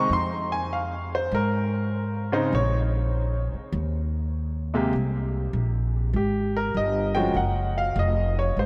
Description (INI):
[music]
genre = jazz piano trio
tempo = 99 BPM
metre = 4/4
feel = swing 68% on 8ths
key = Ab major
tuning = A4 = 439 Hz
[part]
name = clear baby grand piano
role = melody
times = 0.0-8.7 s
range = C3 to Db6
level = -28 LUFS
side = equal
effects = diffuse ambient delay
[part]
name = upright bass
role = bass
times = 0.0-8.7 s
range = F1 to Ab2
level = -28 LUFS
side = equal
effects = none
[sound]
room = wet cathedral reverb, RT60 5.0 s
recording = dreamy mix soaked in reverb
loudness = -25 LUFS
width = mono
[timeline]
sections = 0.0-4.9 A section; 4.9-8.7 B section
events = grand piano solo 4.9-8.7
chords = 0.1 Fm; 2.5 N.C.; 4.9 Abmaj9; 7.4 Ebmadd9